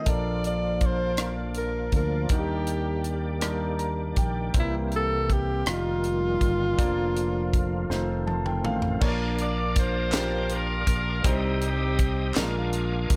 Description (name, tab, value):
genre	slow gospel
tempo	54 BPM (dotted quarters)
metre	6/8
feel	straight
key	Bb major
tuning	A4 = 444 Hz
part	warm alto saxophone	melody	0.0-8.3 s	E4 to Eb5	-32 LUFS	equal	none
part	clear concert grand piano	accompaniment	0.0-13.2 s	Bb2 to Bb5	-35 LUFS	equal	none
part	bright tonewheel organ	sustained chords	0.0-13.2 s	D3 to Eb6	-36 LUFS	equal	fast rotary speaker, chorus vibrato
part	fingered electric bass	bass	0.1-13.2 s	F1 to Eb2	-32 LUFS	equal	none
part	tight funk drum kit	drums	0.1-13.2 s	crash cymbal, hi-hat, kick drum, rim click, snare drum, toms	-28 LUFS	equal	none
part	clear saxophone section	melody	9.4-13.2 s	Ab3 to D5	-33 LUFS	equal	none
part	group handclap	percussion	10.1-12.7 s	none	-40 LUFS	equal	none
room	light reverb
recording	none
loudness	-26 LUFS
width	mono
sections	0.0-9.0 A section; 9.0-13.2 B section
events	grand piano fill 3.4-4.5, 7.9-9.0; drum fill 7.9-9.0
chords	0.1 Bbmaj7; 2.3 Ebmaj7; 4.5 C7; 5.7 F9sus4; 6.8 Bb/F; 7.9 F7; 9.0 Bb; 11.2 Cm; 12.4 Bb7